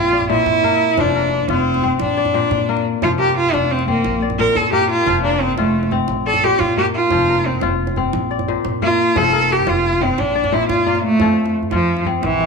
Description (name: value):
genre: west african traditional, West African string and xylophone music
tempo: 117 BPM (dotted quarters)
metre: 12/8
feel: straight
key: F major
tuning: A4 = 435 Hz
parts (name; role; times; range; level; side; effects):
- clear cello; melody; 0.0-12.5 s; E3 to Bb4; -16 LUFS; right 1 dB; none
- kora; arpeggios; 0.0-12.5 s; Bb2 to E5; -21 LUFS; left 9 dB; none
- upright bass; bass; 0.0-12.5 s; F1 to Bb2; -25 LUFS; right 2 dB; none
- djembe; percussion; 0.1-12.4 s; none; -27 LUFS; right 8 dB; none
room: moderate echo chamber reverb, RT60 1.7 s, small room ambience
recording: 1960s-style stereo with parts hard left and right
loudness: -15 LUFS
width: side -4 dB against mid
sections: 0.0-11.2 A section; 11.2-12.5 B section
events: cello solo 0.0-11.2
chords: 0.0 Bb; 1.0 F5; 2.0 Bb; 3.0 F5; 4.0 Bb; 5.1 F; 6.1 Bb; 7.1 F5; 8.1 Bb; 9.2 F; 10.2 Bb; 11.2 F